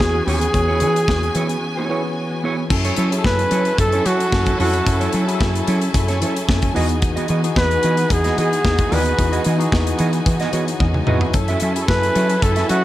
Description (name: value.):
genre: disco.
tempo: 111 BPM.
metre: 4/4.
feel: straight.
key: F# dorian.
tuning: A4 = 438 Hz.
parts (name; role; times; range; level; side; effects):
breathy flugelhorn; melody; 0.0-12.8 s; F#4 to B4; -20 LUFS; equal; tape echo.
tine electric piano; accompaniment; 0.0-12.8 s; E3 to E5; -25 LUFS; left 2 dB; medium stereo tremolo.
rich symphonic string section; sustained chords; 0.0-12.8 s; E3 to G#5; -26 LUFS; equal; none.
fingered electric bass; bass; 0.0-12.8 s; D#2 to F#3; -21 LUFS; equal; none.
modern studio drum kit; drums; 0.0-12.8 s; crash cymbal, hi-hat, kick drum, snare drum, toms; -22 LUFS; equal; none.
mellow electric guitar; accompaniment; 0.1-12.8 s; B3 to E5; -26 LUFS; right 5 dB; none.
room: studio ambience.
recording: none.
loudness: -16 LUFS.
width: side -14 dB against mid.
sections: 0.0-2.7 A section; 2.7-12.8 B section.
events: break 1.6-2.7; tine electric piano fill 10.3-11.3; drum fill 10.8-11.3.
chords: 0.0 E6; 2.7 F#m7; 6.8 Emaj9; 11.3 F#m7.